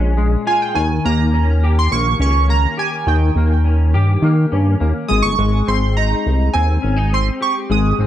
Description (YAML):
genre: indie pop, bedroom pop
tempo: 104 BPM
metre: 4/4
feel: straight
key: unclear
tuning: A4 = 442 Hz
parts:
  - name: semi-hollow electric guitar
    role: accompaniment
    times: 0.0-8.1 s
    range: Bb2 to G4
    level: -22 LUFS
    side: left 3 dB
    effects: ensemble chorus, warbly pitch drift, plate reverb
  - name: chorused synth bass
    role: bass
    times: 0.0-8.1 s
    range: G1 to Eb3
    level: -15 LUFS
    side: equal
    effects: none
  - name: chorused retro synth keys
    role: melody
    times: 0.5-8.1 s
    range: G5 to Eb6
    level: -20 LUFS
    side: right 3 dB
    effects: wide subtle chorus, plate reverb, tape echo
room: light reverb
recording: dark, warm production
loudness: -14 LUFS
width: side -12 dB against mid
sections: 0.0-8.1 A section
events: none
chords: 0.0 Bbm7; 0.8 Eb7; 5.1 Abmaj7